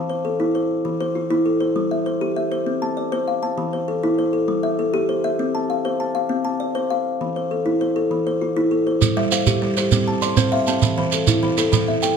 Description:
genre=southern african traditional, mbira-style interlocking cycle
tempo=132 BPM (dotted quarters)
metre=12/8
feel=straight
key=unclear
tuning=A4 = 440 Hz
part: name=kalimba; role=arpeggios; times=0.0-12.2 s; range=E3 to A5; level=-20 LUFS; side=left 2 dB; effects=none
part: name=shekere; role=percussion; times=9.0-12.2 s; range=none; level=-20 LUFS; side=right 7 dB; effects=none
part: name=buzzing kalimba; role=arpeggios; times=9.2-12.2 s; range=E3 to C6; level=-23 LUFS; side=right 4 dB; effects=none
room=moderate recital hall reverb, RT60 1.6 s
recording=close, detailed microphones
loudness=-18 LUFS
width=side -6 dB against mid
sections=0.0-9.0 A section; 9.0-12.2 A section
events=none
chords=0.0 Fmaj7/E; 1.8 C/G; 2.7 C; 3.6 Am/E; 4.5 Am7/G; 5.4 N.C.; 7.2 Fmaj7/E; 9.0 Cadd11/G; 9.9 C; 10.8 Am/E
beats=0.40 0.85 1.31 | 1.76 2.21 2.67 3.12 | 3.58 4.03 4.48 4.94 | 5.39 5.84 6.30 6.75 | 7.21 7.66 8.11 8.56 | 9.02 9.47 9.92 10.37 | 10.82 11.28 11.73

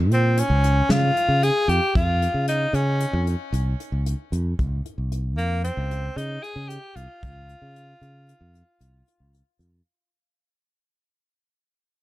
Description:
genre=progressive instrumental, band music in an uneven meter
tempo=114 BPM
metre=5/4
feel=straight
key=unclear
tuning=A4 = 438 Hz
part: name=fingered electric bass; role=bass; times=0.0-9.8 s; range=C2 to Db3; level=-22 LUFS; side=equal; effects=none
part: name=edgy tenor saxophone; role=melody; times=0.1-9.3 s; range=Bb3 to Ab4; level=-24 LUFS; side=equal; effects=ping-pong delay
part: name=soft brush drum kit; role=drums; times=0.1-9.7 s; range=hi-hat, kick drum, snare drum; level=-28 LUFS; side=equal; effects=none
room=light reverb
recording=dark, warm production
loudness=-20 LUFS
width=side -16 dB against mid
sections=0.0-9.9 A section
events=fade-out 0.0-9.9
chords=0.0 Db; 4.6 Bbmadd9/C (rootless)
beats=0.37 0.90 1.42 | 1.95 2.48 3.00 3.53 4.06 | 4.59 5.11 5.64 6.17 6.70 | 7.22 7.75 8.28 8.80 9.33

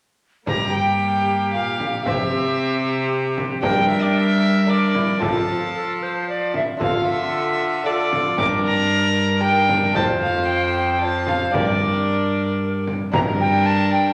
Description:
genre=classical, renaissance-style consort dance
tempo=114 BPM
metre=3/4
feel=straight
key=G dorian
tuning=A4 = 443 Hz
part: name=bright alto recorder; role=melody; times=0.5-14.1 s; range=G4 to Bb5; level=-27 LUFS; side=equal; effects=none
part: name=warm violin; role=second line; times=0.5-14.1 s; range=Bb4 to D6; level=-25 LUFS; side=equal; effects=none
part: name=lute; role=accompaniment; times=0.5-14.1 s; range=F2 to C5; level=-33 LUFS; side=equal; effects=none
part: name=warm viola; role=accompaniment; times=0.5-14.1 s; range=Bb3 to F4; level=-30 LUFS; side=equal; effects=none
part: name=rich cello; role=bass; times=0.5-14.1 s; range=F2 to G3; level=-26 LUFS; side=equal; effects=none
part: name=frame drum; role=percussion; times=0.5-13.4 s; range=none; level=-29 LUFS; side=equal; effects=none
room=wet recital hall reverb, RT60 1.3 s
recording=none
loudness=-20 LUFS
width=mono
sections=0.5-13.1 A section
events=none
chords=0.5 Gm; 2.1 C; 3.6 Gm; 5.2 F; 6.8 Dm; 8.4 Gm; 10.0 F; 11.5 Gm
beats=| 0.48 1.01 1.53 | 2.06 2.58 3.11 | 3.63 4.16 4.68 | 5.22 5.75 6.28 | 6.81 7.34 7.86 | 8.39 8.91 9.43 | 9.96 10.48 11.01 | 11.54 12.07 12.61 | 13.14 13.67

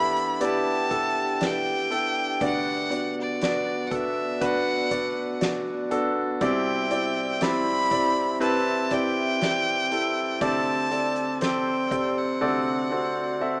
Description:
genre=pop ballad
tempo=60 BPM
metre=4/4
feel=straight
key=unclear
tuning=A4 = 440 Hz
part: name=bright violin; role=melody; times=0.0-13.6 s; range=D5 to B5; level=-30 LUFS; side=equal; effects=none
part: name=warm concert grand piano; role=accompaniment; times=0.0-13.6 s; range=C2 to E5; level=-28 LUFS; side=equal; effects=none
part: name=glass harmonica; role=sustained chords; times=0.0-13.6 s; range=B3 to G5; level=-34 LUFS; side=equal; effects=none
part: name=soft-mallet drum kit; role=drums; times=0.2-12.6 s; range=hi-hat, kick drum, snare drum, toms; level=-36 LUFS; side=equal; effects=none
room=moderate plate reverb, RT60 3.6 s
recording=rough home demo mix, small speaker sound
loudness=-25 LUFS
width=mono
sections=0.0-13.6 A section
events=drum fill 12.4-13.6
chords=0.0 Em7; 2.4 Bm/D; 6.4 Cadd9; 10.4 D7sus4; 12.4 D7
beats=0.41 1.41 | 2.41 3.41 4.41 5.41 | 6.41 7.41 8.41 9.41 | 10.41 11.41 12.41 13.41

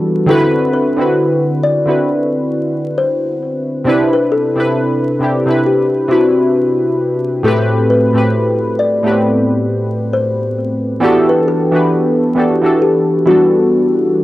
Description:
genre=hip hop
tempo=67 BPM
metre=4/4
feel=swing 58% on 16ths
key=E minor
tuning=A4 = 440 Hz
part: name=kalimba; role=melody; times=0.0-14.2 s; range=F#4 to D5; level=-16 LUFS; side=left 3 dB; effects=low-pass filter, cassette tape
part: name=warm analog keys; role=accompaniment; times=0.0-14.2 s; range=A2 to B4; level=-13 LUFS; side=right 1 dB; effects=chorus, low-pass filter, cassette tape
room=light reverb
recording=home recording on cassette, vinyl crackle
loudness=-11 LUFS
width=side -16 dB against mid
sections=0.0-14.2 A section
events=none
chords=0.3 D13; 3.9 Cmaj9; 7.4 Am9; 11.0 Em11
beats=| 0.28 1.18 2.07 2.97 | 3.86 4.76 5.65 6.55 | 7.44 8.34 9.23 10.13 | 11.03 11.92 12.82 13.71

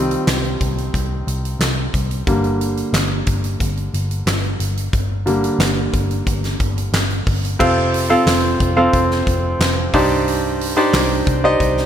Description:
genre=piano-driven pop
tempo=90 BPM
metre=4/4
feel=straight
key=unclear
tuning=A4 = 437 Hz
part: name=clear concert grand piano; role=accompaniment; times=0.0-11.9 s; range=G2 to A5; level=-18 LUFS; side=equal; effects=none
part: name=vintage muted picked electric bass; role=bass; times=0.0-11.9 s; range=F1 to C2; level=-21 LUFS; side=left 1 dB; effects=none
part: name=huge arena drum kit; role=drums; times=0.1-11.9 s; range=crash cymbal, handclaps, hi-hat, kick drum, snare drum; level=-21 LUFS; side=equal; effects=gated reverb
room=moderate plate reverb, RT60 2.7 s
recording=bright 1980s-style digital production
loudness=-15 LUFS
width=side -9 dB against mid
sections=0.0-7.6 A section; 7.6-11.9 B section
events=grand piano solo 0.0-7.6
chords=0.0 Cm; 2.3 Gm; 7.6 F; 9.9 Cmadd9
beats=0.28 0.94 1.61 | 2.28 2.94 3.61 4.28 | 4.94 5.61 6.27 6.94 | 7.61 8.27 8.94 9.60 | 10.27 10.94 11.60

